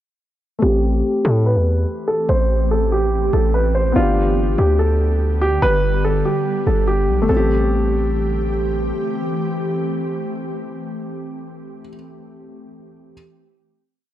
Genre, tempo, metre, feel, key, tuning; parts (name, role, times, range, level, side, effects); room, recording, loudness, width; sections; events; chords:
hip hop, trap; 144 BPM; 4/4; half-time; A minor; A4 = 440 Hz
dark grand piano; melody; 0.6-8.5 s; F4 to C5; -20 LUFS; right 1 dB; low-pass filter
dark concert grand piano; accompaniment; 0.6-13.1 s; A3 to G4; -25 LUFS; left 2 dB; low-pass filter
ethereal airy pad; sustained chords; 1.9-11.4 s; D3 to G4; -25 LUFS; equal; ensemble chorus, built-in reverb, low-pass filter
distorted 808-style bass; bass; 0.6-8.9 s; G1 to A2; -18 LUFS; equal; distortion
small room ambience; dry, gritty hardware recording, cassette tape; -16 LUFS; side -12 dB against mid
0.6-7.3 breakdown; 7.3-10.6 final chord
filter sweep 0.6-7.3
0.6 Am7; 4.0 G; 7.3 Am7